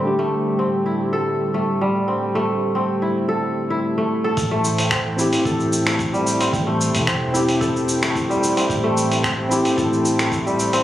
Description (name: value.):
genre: organic downtempo.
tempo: 111 BPM.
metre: 4/4.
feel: straight.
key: A minor pentatonic.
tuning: A4 = 440 Hz.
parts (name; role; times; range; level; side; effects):
tine electric piano; accompaniment; 0.0-10.8 s; A3 to G4; -24 LUFS; equal; medium stereo tremolo, sidechain pumping, ping-pong delay.
warm analog pad; sustained chords; 0.0-10.8 s; A2 to G5; -25 LUFS; left 1 dB; chorus, sidechain pumping.
kora; arpeggios; 0.0-10.8 s; G3 to A4; -22 LUFS; equal; ping-pong delay.
woody fretless electric bass; bass; 4.4-10.8 s; E1 to A1; -25 LUFS; equal; sidechain pumping.
dusty soul sampler-style drum kit; drums; 4.4-10.8 s; finger snaps, hi-hat, shaker; -24 LUFS; equal; none.
electronic kick drum; drums; 4.4-10.4 s; none; -29 LUFS; equal; none.
room: light reverb, digital ambience.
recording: recorded on a phone in the room, studio reverb.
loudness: -18 LUFS.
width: side -12 dB against mid.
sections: 0.0-4.4 A section; 4.4-10.8 B section.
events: filter sweep on tine electric piano 0.0-4.4.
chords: 0.0 Am7.